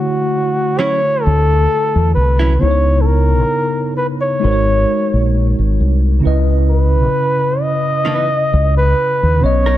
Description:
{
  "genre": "R&B",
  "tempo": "66 BPM",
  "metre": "4/4",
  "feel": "swing 54% on 16ths",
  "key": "unclear",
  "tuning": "A4 = 439 Hz",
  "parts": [
    { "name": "breathy flugelhorn", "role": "melody", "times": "0.0-9.8 s", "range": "F#4 to D#5", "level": "-16 LUFS", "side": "equal", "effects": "none" },
    { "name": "tine electric piano", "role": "accompaniment", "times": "0.0-9.8 s", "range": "B2 to D#5", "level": "-19 LUFS", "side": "left 1 dB", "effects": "medium stereo tremolo" },
    { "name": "hollow-body jazz guitar", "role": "second line", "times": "0.8-2.5, 8.0-9.8 s", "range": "E3 to A#4", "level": "-21 LUFS", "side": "right 4 dB", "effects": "none" },
    { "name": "deep dub fingered electric bass", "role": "bass", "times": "1.3-9.8 s", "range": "G#1 to E2", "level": "-13 LUFS", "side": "equal", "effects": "none" }
  ],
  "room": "light reverb, digital ambience",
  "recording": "lossy compression artefacts",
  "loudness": "-12 LUFS",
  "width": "side -13 dB against mid",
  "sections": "0.0-6.2 A section; 6.2-9.8 B section",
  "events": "none",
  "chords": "0.0 Dmaj9; 2.6 C#m7; 4.4 G#9sus4; 6.2 C#m9"
}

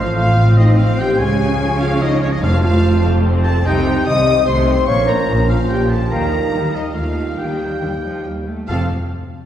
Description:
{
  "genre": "cinematic, heroic adventure film score",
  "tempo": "145 BPM",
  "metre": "3/4",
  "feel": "straight",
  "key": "F mixolydian",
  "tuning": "A4 = 439 Hz",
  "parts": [
    { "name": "warm symphonic violin section", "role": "melody", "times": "0.0-8.9 s", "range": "Db5 to Eb6", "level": "-29 LUFS", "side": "left 3 dB", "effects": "none" },
    { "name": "bright concert flute", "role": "second line", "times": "0.0-8.9 s", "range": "F5 to A5", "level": "-33 LUFS", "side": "left 1 dB", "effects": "none" },
    { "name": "warm clarinet", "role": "second line", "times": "0.0-8.9 s", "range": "C5 to F5", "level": "-30 LUFS", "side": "right 1 dB", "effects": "none" },
    { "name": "warm oboe", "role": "second line", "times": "0.0-8.9 s", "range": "Db5 to Eb6", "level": "-27 LUFS", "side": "equal", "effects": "none" },
    { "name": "warm symphonic violin section", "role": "second line", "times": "0.0-8.9 s", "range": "Db5 to Eb6", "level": "-30 LUFS", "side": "left 1 dB", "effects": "none" },
    { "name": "warm symphonic viola section", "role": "accompaniment", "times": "0.0-8.9 s", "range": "F3 to A4", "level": "-26 LUFS", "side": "right 2 dB", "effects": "none" },
    { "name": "mellow French horn section", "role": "sustained chords", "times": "0.0-8.9 s", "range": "Db4 to Eb5", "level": "-20 LUFS", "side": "left 2 dB", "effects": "none" },
    { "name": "mellow trombone section", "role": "sustained chords", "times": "0.0-8.9 s", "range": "Eb3 to Eb4", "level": "-26 LUFS", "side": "right 4 dB", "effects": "none" },
    { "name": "warm trumpet", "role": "stabs", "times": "0.0-8.9 s", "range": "C5 to F5", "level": "-30 LUFS", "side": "equal", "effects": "none" },
    { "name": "rich symphonic double bass section", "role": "bass", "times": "0.0-8.9 s", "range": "F1 to Eb2", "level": "-19 LUFS", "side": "equal", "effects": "none" },
    { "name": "warm chamber cello section", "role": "bass", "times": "0.0-8.9 s", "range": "F2 to A3", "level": "-21 LUFS", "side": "equal", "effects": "none" },
    { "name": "timpani", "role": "percussion", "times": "2.4-3.0, 8.7-8.9 s", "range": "F2", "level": "-22 LUFS", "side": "equal", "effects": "none" }
  ],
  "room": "wet scoring stage reverb, RT60 1.9 s",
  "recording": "heard from further back in the room, lossy compression artefacts",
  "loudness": "-14 LUFS",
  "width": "side -10 dB against mid",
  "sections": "0.0-8.7 A section",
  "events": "slowing down 5.5-8.7",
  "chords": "0.0 F/A; 1.2 Db; 2.4 F; 3.7 Cm; 4.9 Bbmadd9; 6.1 Ebadd9; 8.7 F"
}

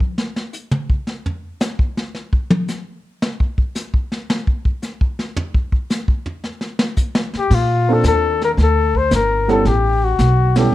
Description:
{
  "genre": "jazz, small-group swing and bop",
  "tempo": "112 BPM",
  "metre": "4/4",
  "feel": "swing 69% on 8ths",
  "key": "Bb major from 7.5 s",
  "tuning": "A4 = 444 Hz",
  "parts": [
    { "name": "vintage brush drum kit", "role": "drums", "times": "0.0-10.7 s", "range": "brushed snare drum, crash cymbal, hi-hat, kick drum, ride cymbal, snare drum, toms", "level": "-19 LUFS", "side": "equal", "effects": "none" },
    { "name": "upright bass", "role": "bass", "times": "7.3-10.7 s", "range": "G1 to Bb2", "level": "-16 LUFS", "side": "equal", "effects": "none" },
    { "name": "warm flugelhorn", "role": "melody", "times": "7.4-10.7 s", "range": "F4 to C5", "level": "-17 LUFS", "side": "left 5 dB", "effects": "none" },
    { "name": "dark baby grand piano", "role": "accompaniment", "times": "7.9-10.7 s", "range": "G3 to A4", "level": "-19 LUFS", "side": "right 4 dB", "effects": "none" }
  ],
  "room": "light reverb",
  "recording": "dark, warm production",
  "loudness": "-16 LUFS",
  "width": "side -15 dB against mid",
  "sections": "0.0-7.5 A section; 7.5-10.7 B section",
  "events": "drum solo 0.0-7.5; band accent 10.5",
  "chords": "0.0 N.C.; 7.5 Bbmaj7; 9.7 A7"
}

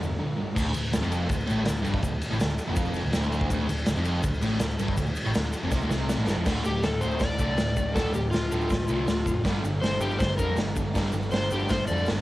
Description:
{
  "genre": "garage rock duo or trio",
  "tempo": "162 BPM",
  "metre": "4/4",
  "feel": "straight",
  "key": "D minor",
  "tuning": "A4 = 440 Hz",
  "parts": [
    { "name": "fuzz guitar", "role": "riff", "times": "0.0-12.2 s", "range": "D2 to G3", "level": "-29 LUFS", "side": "equal", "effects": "distortion, cassette tape" },
    { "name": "hollow-body short-scale picked electric bass", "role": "bass", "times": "0.0-12.2 s", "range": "D1 to F2", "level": "-30 LUFS", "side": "equal", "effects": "none" },
    { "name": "tube shaker", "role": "percussion", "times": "0.0-12.2 s", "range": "none", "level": "-47 LUFS", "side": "left 6 dB", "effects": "none" },
    { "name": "raw garage drum kit", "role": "drums", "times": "0.6-12.2 s", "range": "crash cymbal, hi-hat, kick drum, ride cymbal, snare drum", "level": "-28 LUFS", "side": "equal", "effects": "cassette tape" },
    { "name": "overdriven slide guitar", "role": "melody", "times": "6.7-12.1 s", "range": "F4 to D5", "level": "-30 LUFS", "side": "left 2 dB", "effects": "cassette tape" }
  ],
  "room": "light reverb, small room ambience",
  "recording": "home recording on cassette",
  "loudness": "-24 LUFS",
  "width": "side -16 dB against mid",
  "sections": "0.6-6.5 A section; 6.5-12.2 B section",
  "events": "drum fill 5.7-6.5; electric slide guitar solo 6.5-12.2",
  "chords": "0.0 G5; 0.6 Dm; 9.5 G5"
}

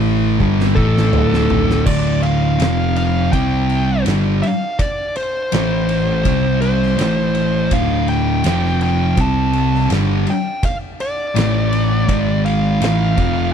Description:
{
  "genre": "stoner and doom metal",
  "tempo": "82 BPM",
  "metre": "4/4",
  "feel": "straight",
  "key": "D minor",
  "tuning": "A4 = 440 Hz",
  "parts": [
    { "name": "thick fuzz guitar", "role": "riff", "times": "0.0-13.5 s", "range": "D2 to C4", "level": "-19 LUFS", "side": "left 11 dB", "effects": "distortion" },
    { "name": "thick fuzz guitar", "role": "riff", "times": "0.0-13.5 s", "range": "D2 to C4", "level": "-20 LUFS", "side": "right 13 dB", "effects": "distortion" },
    { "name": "picked electric bass", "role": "bass", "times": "0.0-13.5 s", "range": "D1 to C2", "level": "-20 LUFS", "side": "right 1 dB", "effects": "overdrive" },
    { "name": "oversized low-tuned drum kit", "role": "drums", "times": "0.4-13.3 s", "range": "crash cymbal, kick drum, ride cymbal, snare drum, toms", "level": "-23 LUFS", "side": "equal", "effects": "none" },
    { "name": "fuzz lead guitar", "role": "melody", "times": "0.8-13.5 s", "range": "A4 to A5", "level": "-22 LUFS", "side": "equal", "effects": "distortion" }
  ],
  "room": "little or no reverb",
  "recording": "none",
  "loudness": "-14 LUFS",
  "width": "side -8 dB against mid",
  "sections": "0.0-1.9 A section; 1.9-13.5 B section",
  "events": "drum fill 0.4-1.9",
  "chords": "0.4 D5; 1.9 Dm; 2.6 F5; 3.3 C5; 4.1 G7sus4; 5.5 A5; 6.3 C5; 7.0 A5; 7.7 Dm; 8.4 F5; 9.2 C5; 9.9 G5; 11.4 A5; 12.1 G#5; 12.8 Dm (rootless)"
}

